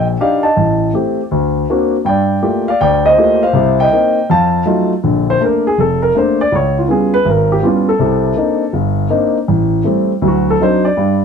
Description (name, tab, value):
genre	solo jazz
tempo	162 BPM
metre	4/4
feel	swing 66% on 8ths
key	Bb major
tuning	A4 = 440 Hz
part	dark concert grand piano	solo	0.0-11.2 s	F1 to A5	-11 LUFS	equal	none
room	light reverb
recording	none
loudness	-11 LUFS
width	side -6 dB against mid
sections	0.0-5.0 A section; 5.0-11.2 B section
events	grand piano solo 5.0-11.2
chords	0.0 Ebmaj7; 0.6 Am7b5; 1.3 D7b13; 2.1 Gm9; 3.5 Cm7; 4.3 F7b9; 5.0 Bbmaj7; 6.5 Db7#11; 8.0 Cm9; 9.5 Am7; 10.2 D7b9